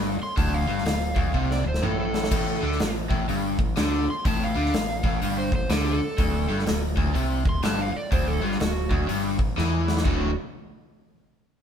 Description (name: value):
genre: blues rock power trio and southern rock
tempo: 124 BPM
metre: 4/4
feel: swing 63% on 8ths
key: unclear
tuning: A4 = 440 Hz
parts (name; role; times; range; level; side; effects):
- overdriven electric guitar; riff; 0.0-10.3 s; D2 to E3; -27 LUFS; left 1 dB; none
- growling picked electric bass; bass; 0.0-10.3 s; D1 to E2; -28 LUFS; equal; overdrive
- overdriven slide guitar; melody; 0.2-10.3 s; F4 to C6; -31 LUFS; right 1 dB; none
- big rock drum kit; drums; 0.4-10.2 s; crash cymbal, hi-hat, kick drum, snare drum, toms; -27 LUFS; equal; none
room: moderate stone room reverb, RT60 1.2 s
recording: band playing live in one room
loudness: -22 LUFS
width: side -8 dB against mid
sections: 0.0-10.1 A section; 10.1-11.6 B section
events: drum fill 1.3-2.3, 9.6-10.1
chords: 0.0 D5; 2.3 G7sus2; 6.2 D7(no3); 9.1 A5; 10.1 D5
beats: | 0.37 0.86 1.34 1.83 | 2.31 2.79 3.28 3.76 | 4.25 4.73 5.22 5.70 | 6.18 6.67 7.15 7.63 | 8.12 8.60 9.09 9.57 | 10.05